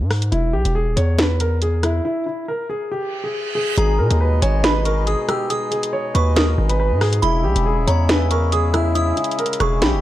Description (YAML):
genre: hip hop, drill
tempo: 139 BPM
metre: 4/4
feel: half-time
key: G# harmonic minor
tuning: A4 = 440 Hz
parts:
  - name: distorted 808-style bass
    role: bass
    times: 0.0-10.0 s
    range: D#1 to B2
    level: -18 LUFS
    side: equal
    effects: distortion
  - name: drill drum kit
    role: drums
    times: 0.1-9.9 s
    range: hi-hat, rim click, snare drum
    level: -21 LUFS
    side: equal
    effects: none
  - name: dark concert grand piano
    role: melody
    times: 0.3-10.0 s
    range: E4 to C#5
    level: -22 LUFS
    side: equal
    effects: none
  - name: reverse cymbal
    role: sound effects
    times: 3.1-3.8 s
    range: none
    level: -28 LUFS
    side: right 5 dB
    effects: none
  - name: delicate synth tine bell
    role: second line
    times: 3.8-10.0 s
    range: G#5 to E6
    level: -26 LUFS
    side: right 3 dB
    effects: chorus, phaser, ping-pong delay
  - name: pedal harmonium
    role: sustained chords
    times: 3.8-10.0 s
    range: B2 to E4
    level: -26 LUFS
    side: left 3 dB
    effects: none
room: light reverb, digital ambience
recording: dark, warm production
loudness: -16 LUFS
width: side -14 dB against mid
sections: 0.0-3.8 A section; 3.8-10.0 B section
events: break 0.0-0.3, 2.0-3.8; reverse cymbal 3.1-3.8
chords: 0.3 E5; 3.8 G#m; 7.2 E6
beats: | 0.32 0.75 1.19 1.62 | 2.05 2.48 2.91 3.34 | 3.77 4.21 4.64 5.07 | 5.50 5.93 6.37 6.80 | 7.23 7.66 8.09 8.52 | 8.96 9.39 9.82